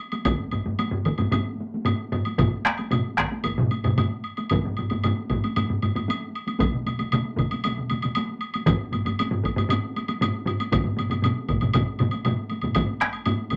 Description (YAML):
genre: japanese traditional, taiko drum ensemble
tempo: 115 BPM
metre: 4/4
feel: straight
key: none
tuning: none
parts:
  - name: taiko ensemble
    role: percussion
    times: 0.1-13.6 s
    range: none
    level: -31 LUFS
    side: equal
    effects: none
  - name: woodblock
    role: percussion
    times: 0.1-13.6 s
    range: none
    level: -33 LUFS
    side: equal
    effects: none
  - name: taiko ensemble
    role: percussion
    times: 0.3-13.6 s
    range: none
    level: -28 LUFS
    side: equal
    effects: none
  - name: taiko ensemble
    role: percussion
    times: 0.3-13.6 s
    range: none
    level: -28 LUFS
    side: equal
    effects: none
  - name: taiko ensemble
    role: percussion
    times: 2.4-12.7 s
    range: none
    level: -30 LUFS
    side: equal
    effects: none
room: wet studio reverb, RT60 0.5 s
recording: none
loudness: -25 LUFS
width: mono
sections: 0.0-12.8 A section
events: speeding up 0.0-13.6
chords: none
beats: | 0.26 0.79 1.33 1.86 | 2.39 2.92 3.45 3.98 | 4.50 5.03 5.55 6.08 | 6.60 7.12 7.64 8.15 | 8.67 9.19 9.70 10.21 | 10.72 11.23 11.74 12.24 | 12.75 13.26